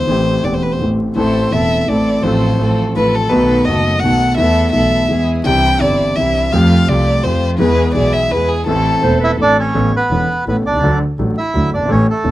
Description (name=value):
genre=tango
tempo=168 BPM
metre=3/4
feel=rubato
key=A minor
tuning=A4 = 438 Hz
part: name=warm violin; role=second line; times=0.0-9.3 s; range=G#4 to G5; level=-17 LUFS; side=left 1 dB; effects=none
part: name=warm grand piano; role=accompaniment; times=0.0-12.3 s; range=E1 to A4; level=-16 LUFS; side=equal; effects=none
part: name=clear double bass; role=bass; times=0.0-12.3 s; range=E1 to F2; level=-19 LUFS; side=right 1 dB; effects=none
part: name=warm chamber string section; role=stabs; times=1.2-9.7 s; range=A3 to A4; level=-25 LUFS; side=equal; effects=none
part: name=clear clarinet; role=second line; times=9.0-9.7 s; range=A4 to C5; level=-20 LUFS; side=right 5 dB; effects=none
part: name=bandoneon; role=melody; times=9.2-12.3 s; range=A3 to E5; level=-16 LUFS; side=right 2 dB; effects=none
room=moderate club ambience, RT60 0.5 s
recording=close, detailed microphones, vinyl crackle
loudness=-12 LUFS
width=side -15 dB against mid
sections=0.0-9.7 A section; 9.7-12.3 B section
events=violin solo 0.0-9.7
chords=0.1 Am7; 1.2 Am; 2.2 F/A; 3.3 B7; 4.4 Esus4; 5.1 E; 5.5 Cadd9; 6.5 Fadd9; 7.6 E; 8.7 Am; 9.7 Aadd9; 10.8 D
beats=| 0.10 0.45 0.81 | 1.17 1.53 1.89 | 2.24 2.60 2.96 | 3.31 3.67 4.03 | 4.38 4.74 5.10 | 5.46 5.82 6.17 | 6.53 6.89 7.24 | 7.60 7.96 8.31 | 8.67 9.03 9.39 | 9.75 10.11 10.46 | 10.82 11.18 11.54 | 11.89 12.25